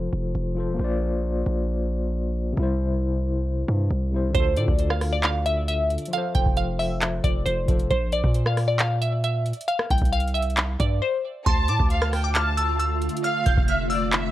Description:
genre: hip hop, trap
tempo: 135 BPM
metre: 4/4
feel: half-time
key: D minor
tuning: A4 = 442 Hz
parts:
  - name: overdriven tine electric piano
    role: accompaniment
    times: 0.0-7.9 s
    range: C3 to D5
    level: -28 LUFS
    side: left 3 dB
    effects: medium tremolo
  - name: distorted 808-style bass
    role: bass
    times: 0.0-14.3 s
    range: E1 to Bb2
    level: -25 LUFS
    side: equal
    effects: distortion
  - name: glassy wavetable pluck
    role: melody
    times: 4.3-14.1 s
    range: C5 to G6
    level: -26 LUFS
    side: equal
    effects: chorus, tape echo
  - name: booming analog drum machine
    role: drums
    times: 4.3-14.2 s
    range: handclaps, hi-hat, kick drum, rim click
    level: -24 LUFS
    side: equal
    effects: none
  - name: rich studio violin section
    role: second line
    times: 11.5-14.3 s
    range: D5 to A5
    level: -28 LUFS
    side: right 1 dB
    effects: tape echo
  - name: glassy FM pad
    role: sustained chords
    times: 12.2-14.3 s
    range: C3 to F4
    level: -30 LUFS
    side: right 1 dB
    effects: ensemble chorus, built-in reverb
room: digital ambience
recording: worn, warbling old tape, cassette tape, warbly pitch drift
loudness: -21 LUFS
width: side -14 dB against mid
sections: 0.0-11.5 A section; 11.5-14.3 B section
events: break 0.0-4.3, 11.0-11.5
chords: 0.0 F; 0.8 Bbadd9; 2.6 C; 4.3 Dm; 6.1 F; 7.9 Bb; 9.7 C5; 11.5 Dm; 13.2 F

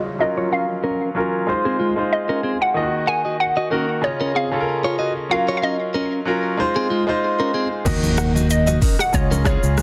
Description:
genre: afrobeats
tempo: 94 BPM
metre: 4/4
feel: swing 55% on 16ths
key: Eb dorian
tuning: A4 = 440 Hz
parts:
  - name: hollow square pluck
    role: melody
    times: 0.0-9.8 s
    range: Db5 to Ab5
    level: -25 LUFS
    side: equal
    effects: chorus, low-pass filter, delay
  - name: bright grand piano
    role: accompaniment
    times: 0.0-9.8 s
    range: Db3 to Eb5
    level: -25 LUFS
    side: equal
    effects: low-pass filter
  - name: direct-recorded clean electric guitar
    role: riff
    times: 0.0-9.6 s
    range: Ab3 to Gb5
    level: -27 LUFS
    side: equal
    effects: low-pass filter, delay
  - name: downlifter and impact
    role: sound effects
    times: 0.0-2.8, 8.1-9.8 s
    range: none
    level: -35 LUFS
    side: equal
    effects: none
  - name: fingered electric bass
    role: bass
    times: 7.9-9.8 s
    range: Db2 to Eb2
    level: -21 LUFS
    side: equal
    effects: none
  - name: afro-pop drum kit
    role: drums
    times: 7.9-9.8 s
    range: crash cymbal, hi-hat, kick drum, rim click, shaker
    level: -23 LUFS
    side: equal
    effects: overdrive
  - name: congas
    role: percussion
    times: 7.9-9.8 s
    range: none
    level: -32 LUFS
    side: equal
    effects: none
room: light reverb, digital ambience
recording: dense, heavily limited modern master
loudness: -20 LUFS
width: mono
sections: 0.0-7.9 A section; 7.9-9.8 B section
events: filter sweep 0.0-7.9; impact 7.9-9.8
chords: 0.2 Gbmaj7; 1.5 Ab6; 2.8 Ebm; 4.0 Dbadd9; 5.3 Gbmaj7; 6.6 Ab6; 7.9 Ebm; 9.1 Dbadd9

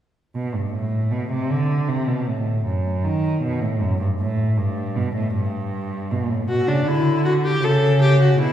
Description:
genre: classical, baroque-style fugue for string quartet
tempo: 78 BPM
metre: 4/4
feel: straight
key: unclear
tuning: A4 = 440 Hz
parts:
  - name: rich cello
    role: bass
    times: 0.3-8.5 s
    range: F#2 to D#3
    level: -19 LUFS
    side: right 1 dB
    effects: none
  - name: clear viola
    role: accompaniment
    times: 6.5-8.5 s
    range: D4 to A4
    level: -20 LUFS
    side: left 2 dB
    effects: none
room: wet recital hall reverb, RT60 1.7 s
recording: recorded in a church or concert hall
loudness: -19 LUFS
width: side -10 dB against mid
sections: 0.0-8.5 A section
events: none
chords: 0.0 Gadd9; 1.5 D; 3.0 B7; 4.6 Gadd9; 6.1 Bm; 7.6 A/C#

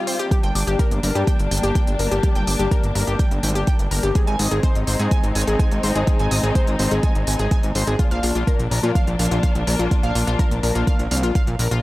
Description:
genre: melodic techno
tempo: 125 BPM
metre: 4/4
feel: straight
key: unclear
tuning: A4 = 440 Hz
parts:
  - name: dark studio string section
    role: sustained chords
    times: 0.0-11.8 s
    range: C3 to F4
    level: -26 LUFS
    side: left 1 dB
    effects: sidechain pumping
  - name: analog pluck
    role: arpeggios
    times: 0.1-11.8 s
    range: F4 to Eb6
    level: -26 LUFS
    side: left 2 dB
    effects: chorus, sidechain pumping, tape echo
  - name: electronic hi-hat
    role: drums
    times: 0.1-11.8 s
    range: none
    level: -28 LUFS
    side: equal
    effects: studio reverb
  - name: electronic kick drum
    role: drums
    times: 0.3-11.4 s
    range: none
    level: -19 LUFS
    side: equal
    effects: studio reverb
  - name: fat analog bass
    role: bass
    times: 0.4-11.8 s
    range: G1 to Bb2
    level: -22 LUFS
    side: equal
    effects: sidechain pumping
room: digital ambience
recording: dry, gritty hardware recording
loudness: -17 LUFS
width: side -18 dB against mid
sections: 0.0-11.8 A section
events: break 0.0-0.3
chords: 0.3 Gm; 4.2 Ab; 8.0 Bb

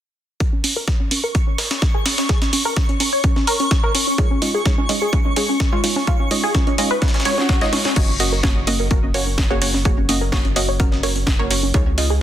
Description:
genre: progressive house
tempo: 127 BPM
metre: 4/4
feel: straight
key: unclear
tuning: A4 = 440 Hz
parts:
  - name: tight sequenced synth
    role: arpeggios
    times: 0.4-12.2 s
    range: C#4 to D#5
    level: -23 LUFS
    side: left 1 dB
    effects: chorus, sidechain pumping, tape echo
  - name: breakbeat sampler-style drum kit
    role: drums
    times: 0.4-12.1 s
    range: hi-hat, snare drum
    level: -28 LUFS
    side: equal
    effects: high-pass filter on hats, high-pass filter on snare, high-pass filter on room
  - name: electronic kick drum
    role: drums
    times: 0.4-11.8 s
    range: none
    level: -18 LUFS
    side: equal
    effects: overdrive
  - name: twinkling granular texture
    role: texture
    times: 1.2-8.0 s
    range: C#6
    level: -28 LUFS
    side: right 2 dB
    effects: built-in reverb, sidechain pumping
  - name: house drum kit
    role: drums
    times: 0.6-12.1 s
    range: crash cymbal, hi-hat, snare drum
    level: -22 LUFS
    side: right 1 dB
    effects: overdrive
  - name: wide unison pluck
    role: stabs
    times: 4.2-12.1 s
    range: G#3 to D#5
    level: -24 LUFS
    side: right 2 dB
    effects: sidechain pumping, tape echo
  - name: congas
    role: percussion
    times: 4.8-7.9 s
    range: none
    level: -28 LUFS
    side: right 2 dB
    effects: sidechain pumping on perc
  - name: swell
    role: sound effects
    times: 7.2-8.0 s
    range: none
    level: -31 LUFS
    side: left 6 dB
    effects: none
  - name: saturated sub bass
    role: bass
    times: 8.0-12.2 s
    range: F#1 to C#2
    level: -22 LUFS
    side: equal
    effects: tube saturation, sidechain pumping
room: light reverb, digital ambience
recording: dense, heavily limited modern master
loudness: -16 LUFS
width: side -11 dB against mid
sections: 0.4-8.0 A section; 8.0-12.2 B section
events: filter sweep on synth arpeggio sound 0.4-8.0, 8.0-12.2; swell 7.2-8.0; drum fill 7.3-8.0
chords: 0.4 N.C.; 4.2 C#add9; 8.0 F#

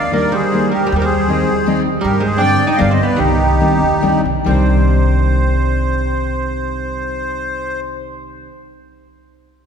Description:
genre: musette waltz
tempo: 137-160 BPM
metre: 3/4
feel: rubato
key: C minor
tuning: A4 = 440 Hz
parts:
  - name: accordion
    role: melody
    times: 0.0-7.8 s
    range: Eb4 to G5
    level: -18 LUFS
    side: equal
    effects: light tremolo tuning
  - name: archtop guitar, miked and amplified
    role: second line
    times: 0.0-8.5 s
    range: Eb3 to Eb4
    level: -21 LUFS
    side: right 3 dB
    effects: none
  - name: upright bass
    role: bass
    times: 0.0-8.5 s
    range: C2 to G2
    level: -18 LUFS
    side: equal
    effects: none
  - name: fingerpicked steel-string acoustic guitar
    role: accompaniment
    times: 0.1-8.5 s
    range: D3 to Eb4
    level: -20 LUFS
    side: left 2 dB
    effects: none
room: wet church reverb, RT60 3.2 s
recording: recorded in a church or concert hall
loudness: -13 LUFS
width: side -7 dB against mid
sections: 0.0-4.5 A section; 4.5-7.0 B section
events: slowing down 2.0-4.5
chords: 0.0 Ebmaj7; 0.9 Cm/Eb; 2.0 Gsus4; 2.8 G; 3.2 Cmadd9

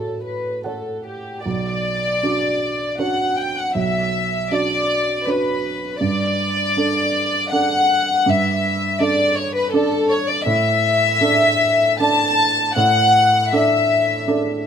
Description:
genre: neoclassical piano and strings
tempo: 80 BPM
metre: 3/4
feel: rubato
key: B minor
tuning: A4 = 440 Hz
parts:
  - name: warm symphonic violin section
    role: melody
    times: 0.0-14.7 s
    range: G4 to A5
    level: -17 LUFS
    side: left 2 dB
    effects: none
  - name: felt-muted upright piano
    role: accompaniment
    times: 0.0-14.7 s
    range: B1 to F#5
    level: -22 LUFS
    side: right 4 dB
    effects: none
room: little or no reverb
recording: recorded outdoors, with no room sound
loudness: -16 LUFS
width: side -8 dB against mid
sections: 0.0-1.5 A section; 1.5-14.7 A section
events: none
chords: 0.0 F#m/A; 1.5 Bmadd9; 6.0 Gsus2; 10.5 Asus4

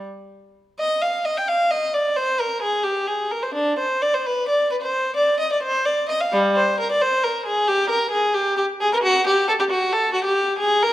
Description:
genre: classical, baroque-style suite movement for unaccompanied violin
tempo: 87 BPM (dotted quarters)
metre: 12/8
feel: uneven beats, rubato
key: C minor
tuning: A4 = 440 Hz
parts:
  - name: warm violin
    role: solo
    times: 0.0-10.9 s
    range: G3 to G5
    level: -18 LUFS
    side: equal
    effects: none
room: moderate recital hall reverb, RT60 1.5 s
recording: none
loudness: -18 LUFS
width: side -14 dB against mid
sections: 0.8-10.9 A section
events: none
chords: none

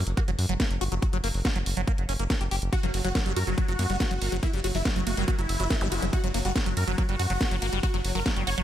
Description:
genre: psychedelic trance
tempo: 141 BPM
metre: 4/4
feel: straight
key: unclear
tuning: A4 = 436 Hz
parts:
  - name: round analog bass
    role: bass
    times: 0.0-8.6 s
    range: F#1 to F#2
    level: -28 LUFS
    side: equal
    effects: tube saturation
  - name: garage drum kit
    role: drums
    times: 0.1-8.6 s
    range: hi-hat, ride cymbal, snare drum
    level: -33 LUFS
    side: equal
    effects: none
  - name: liquid acid bass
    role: riff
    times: 0.2-8.6 s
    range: F#3 to G4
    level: -32 LUFS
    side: moving between left 5 dB and right 5 dB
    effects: phaser, auto-pan, sidechain pumping, diffuse ambient delay
  - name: electronic kick drum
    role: drums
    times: 0.2-8.3 s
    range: none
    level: -26 LUFS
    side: equal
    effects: none
  - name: dense compressed supersaw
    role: melody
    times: 2.7-8.6 s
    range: F#3 to C#5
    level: -32 LUFS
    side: equal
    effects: phaser, sidechain pumping, ping-pong delay
  - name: resonant blip pluck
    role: second line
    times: 2.8-6.3 s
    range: F#3 to A#3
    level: -42 LUFS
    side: left 2 dB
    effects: phaser, wide subtle chorus, sidechain pumping, high-pass filter, tape echo
  - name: zap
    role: sound effects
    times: 5.8-5.9 s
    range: none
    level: -36 LUFS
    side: equal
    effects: none
room: light reverb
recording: none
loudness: -24 LUFS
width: side -11 dB against mid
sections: 0.0-8.6 A section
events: none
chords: 0.0 F#5

